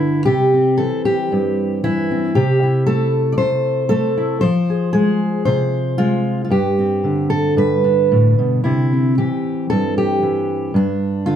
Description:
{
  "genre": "folk, solo fingerstyle acoustic guitar",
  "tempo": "115 BPM",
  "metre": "4/4",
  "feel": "straight",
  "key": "C major",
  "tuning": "A4 = 441 Hz",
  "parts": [
    { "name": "fingerpicked steel-string acoustic guitar", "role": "solo", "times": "0.0-11.4 s", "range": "G2 to D5", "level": "-15 LUFS", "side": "equal", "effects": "none" }
  ],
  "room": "wet small room reverb, RT60 0.5 s",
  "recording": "heard from further back in the room",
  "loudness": "-15 LUFS",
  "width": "side -9 dB against mid",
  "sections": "0.0-8.7 A section; 8.7-11.4 B section",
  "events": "none",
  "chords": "0.3 C; 2.4 Am/C; 4.4 Fm; 6.5 Gsus4; 7.6 G; 8.7 C; 10.7 G5"
}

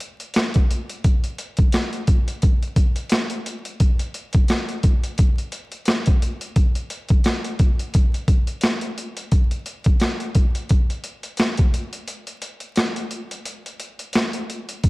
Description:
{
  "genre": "hip hop",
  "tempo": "87 BPM",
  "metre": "4/4",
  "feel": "swing 57% on 16ths",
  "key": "none",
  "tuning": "none",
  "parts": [
    { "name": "boom bap sampler-style drum kit", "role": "drums", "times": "0.0-14.9 s", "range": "hi-hat, kick drum, rim click, snare drum", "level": "-18 LUFS", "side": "equal", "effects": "overdrive" }
  ],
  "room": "little or no reverb",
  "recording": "vinyl crackle",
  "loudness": "-18 LUFS",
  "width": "side -22 dB against mid",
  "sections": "0.0-14.8 A section",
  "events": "break 12.1-14.8",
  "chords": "none"
}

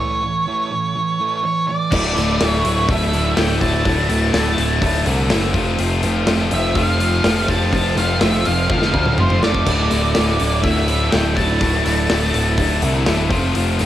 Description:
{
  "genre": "quiet-loud alternative rock",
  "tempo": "124 BPM",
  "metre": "4/4",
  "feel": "straight",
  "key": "unclear",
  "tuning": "A4 = 440 Hz",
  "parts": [
    { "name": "octave-fuzz lead guitar", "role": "melody", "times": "0.0-12.8 s", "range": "C5 to A5", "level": "-22 LUFS", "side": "right 2 dB", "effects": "distortion, cassette tape" },
    { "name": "thick fuzz guitar", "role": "riff", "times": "0.0-13.9 s", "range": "D2 to F4", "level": "-26 LUFS", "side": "right 6 dB", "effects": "distortion, cassette tape" },
    { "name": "ensemble organ-string", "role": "sustained chords", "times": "1.9-13.9 s", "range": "E4 to A5", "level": "-31 LUFS", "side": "right 1 dB", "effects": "none" },
    { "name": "high-gain distorted guitar", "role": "riff", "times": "1.9-13.9 s", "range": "D2 to F4", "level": "-24 LUFS", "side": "left 8 dB", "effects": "distortion, cassette tape" },
    { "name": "high-gain distorted guitar", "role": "riff", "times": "1.9-13.9 s", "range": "D2 to F3", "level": "-26 LUFS", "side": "left 1 dB", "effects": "distortion, cassette tape" },
    { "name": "growling picked electric bass", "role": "bass", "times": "1.9-13.9 s", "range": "D1 to D2", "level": "-20 LUFS", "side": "equal", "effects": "overdrive" },
    { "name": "big rock drum kit", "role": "drums", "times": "1.9-13.9 s", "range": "crash cymbal, hi-hat, kick drum, snare drum, toms", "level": "-21 LUFS", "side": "equal", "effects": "cassette tape" }
  ],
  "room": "light reverb",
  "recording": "home recording on cassette",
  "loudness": "-15 LUFS",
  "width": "side -12 dB against mid",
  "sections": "0.0-1.9 A section; 1.9-13.9 B section",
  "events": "break 0.0-1.9; drum fill 8.7-9.7",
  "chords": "0.0 A; 1.9 Dsus2; 5.5 F; 9.7 Dsus2; 13.3 F"
}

